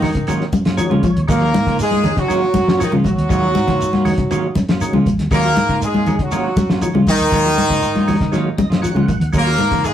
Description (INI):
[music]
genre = afrobeat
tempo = 119 BPM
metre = 4/4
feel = straight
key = Eb minor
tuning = A4 = 440 Hz
[part]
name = bright horn section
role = melody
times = 0.0-9.9 s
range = Eb3 to Bb4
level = -19 LUFS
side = equal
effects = none
[part]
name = clear trombone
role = second line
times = 0.0-9.9 s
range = Eb3 to Bb3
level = -24 LUFS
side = right 1 dB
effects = none
[part]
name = percussive tonewheel organ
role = accompaniment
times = 0.0-9.6 s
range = Eb3 to Gb5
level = -24 LUFS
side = equal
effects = chorus vibrato, slow rotary speaker
[part]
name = semi-hollow electric guitar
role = arpeggios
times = 0.0-9.9 s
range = Db3 to Ab3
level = -25 LUFS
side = left 4 dB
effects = none
[part]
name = clean electric guitar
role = stabs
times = 0.0-9.9 s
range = Gb3 to F4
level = -28 LUFS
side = right 4 dB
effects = none
[part]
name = fingered electric bass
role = bass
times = 0.0-9.9 s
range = Bb1 to Db3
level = -21 LUFS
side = right 1 dB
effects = none
[part]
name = cloth-damped thuddy drum kit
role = drums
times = 0.0-9.9 s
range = hi-hat, kick drum, snare drum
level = -22 LUFS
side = equal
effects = none
[part]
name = congas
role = percussion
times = 0.0-9.9 s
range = none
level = -19 LUFS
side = left 1 dB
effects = none
[part]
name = shekere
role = percussion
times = 0.0-9.9 s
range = none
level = -29 LUFS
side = right 2 dB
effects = none
[sound]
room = wet studio reverb, RT60 0.6 s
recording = rough rehearsal-room recording, warm saturation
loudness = -14 LUFS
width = side -10 dB against mid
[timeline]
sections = 0.0-9.9 A section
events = tonewheel organ fill 0.5-1.3, 8.3-9.3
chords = 0.0 Ebm9